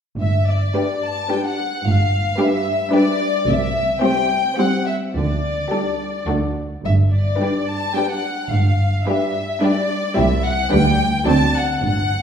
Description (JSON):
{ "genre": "quick classical-period movement for symphony orchestra", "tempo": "108 BPM", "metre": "3/4", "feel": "rubato", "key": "G major", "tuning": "A4 = 440 Hz", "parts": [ { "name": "rich chamber violin section", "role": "melody", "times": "0.2-12.2 s", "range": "D5 to A5", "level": "-22 LUFS", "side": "left 3 dB", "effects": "none" }, { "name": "clear chamber double bass section", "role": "bass", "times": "0.2-12.2 s", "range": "G1 to D2", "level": "-23 LUFS", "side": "right 2 dB", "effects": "none" }, { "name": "rich studio cello section", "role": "bass", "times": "0.2-12.2 s", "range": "G2 to D3", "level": "-21 LUFS", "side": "right 1 dB", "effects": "none" }, { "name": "rich chamber violin section", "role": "second line", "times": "0.7-11.7 s", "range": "D4 to D5", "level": "-26 LUFS", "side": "left 3 dB", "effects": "none" }, { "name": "rich studio viola section", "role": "accompaniment", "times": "0.7-11.7 s", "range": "F#3 to E4", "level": "-22 LUFS", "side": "right 1 dB", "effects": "none" } ], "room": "wet recital hall reverb, RT60 1.6 s", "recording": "heard from further back in the room", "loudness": "-17 LUFS", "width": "side -8 dB against mid", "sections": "0.2-12.2 A section", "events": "none", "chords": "0.2 G; 3.5 C; 5.1 Dsus4; 6.3 D; 6.8 G; 10.2 C; 10.7 G/D; 11.3 D7", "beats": "| 0.18 0.74 1.30 | 1.85 2.39 2.93 | 3.47 4.02 4.57 | 5.14 5.71 6.28 | 6.85 7.40 7.96 | 8.52 9.07 9.61 | 10.16 10.71 11.27 | 11.84" }